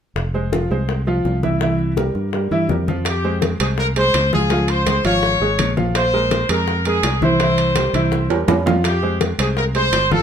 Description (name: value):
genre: latin, salsa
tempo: 166 BPM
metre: 4/4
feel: straight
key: F minor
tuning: A4 = 441 Hz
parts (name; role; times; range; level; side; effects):
- fingered electric bass; bass; 0.2-10.2 s; F1 to G2; -21 LUFS; equal; none
- bongos; percussion; 0.2-10.2 s; none; -27 LUFS; left 6 dB; none
- congas; percussion; 0.2-10.2 s; none; -24 LUFS; left 1 dB; none
- bright upright piano; accompaniment; 0.3-10.2 s; E3 to F5; -21 LUFS; right 1 dB; none
- clear trumpet section; melody; 3.1-10.2 s; G4 to Db5; -19 LUFS; left 1 dB; none
- timbales; percussion; 3.1-10.1 s; none; -25 LUFS; right 6 dB; none
room: moderate studio reverb, RT60 0.8 s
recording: minimal, uncompressed stereo recording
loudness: -16 LUFS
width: side -8 dB against mid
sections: 0.2-3.1 A section; 3.1-10.2 B section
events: drum fill 8.1-8.8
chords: 0.2 Fm; 1.6 C7; 3.1 Fmadd9; 4.5 Dbmaj7; 6.0 Bb5; 7.4 C7; 8.8 Fm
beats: | 0.16 0.52 0.89 1.25 | 1.61 1.97 2.33 2.70 | 3.06 3.42 3.78 4.14 | 4.51 4.87 5.23 5.59 | 5.95 6.31 6.67 7.04 | 7.40 7.76 8.12 8.48 | 8.84 9.20 9.56 9.93